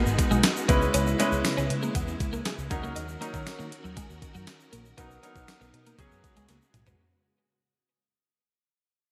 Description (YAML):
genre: 1980s-style pop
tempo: 119 BPM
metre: 4/4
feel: straight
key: unclear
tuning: A4 = 439 Hz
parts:
  - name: clear concert grand piano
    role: accompaniment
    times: 0.0-7.0 s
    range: F#3 to B4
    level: -33 LUFS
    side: equal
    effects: subtle chorus
  - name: soft string machine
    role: sustained chords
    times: 0.0-7.0 s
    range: C#3 to A#4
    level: -37 LUFS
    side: equal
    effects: ensemble chorus
  - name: twelve-string electric guitar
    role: riff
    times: 0.0-7.0 s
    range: F#3 to D#4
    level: -35 LUFS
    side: equal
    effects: analog chorus, delay
  - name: vintage muted picked electric bass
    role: bass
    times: 0.1-6.9 s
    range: G#1 to D#3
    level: -34 LUFS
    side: equal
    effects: none
  - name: tube shaker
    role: percussion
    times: 0.1-7.0 s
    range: none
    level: -45 LUFS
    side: equal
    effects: none
  - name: clean 12-bit digital drum machine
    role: drums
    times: 0.2-7.0 s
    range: hi-hat, kick drum, snare drum, tambourine, toms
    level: -30 LUFS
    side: equal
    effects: overdrive
room: moderate plate reverb, RT60 1.9 s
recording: bright 1980s-style digital production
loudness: -27 LUFS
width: mono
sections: 0.0-7.0 A section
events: fade-out 0.0-7.0; drum fill 6.5-7.0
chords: 0.0 G#m7; 0.7 C#m7; 2.7 D#m7; 5.0 Bmaj7; 6.0 C#7sus4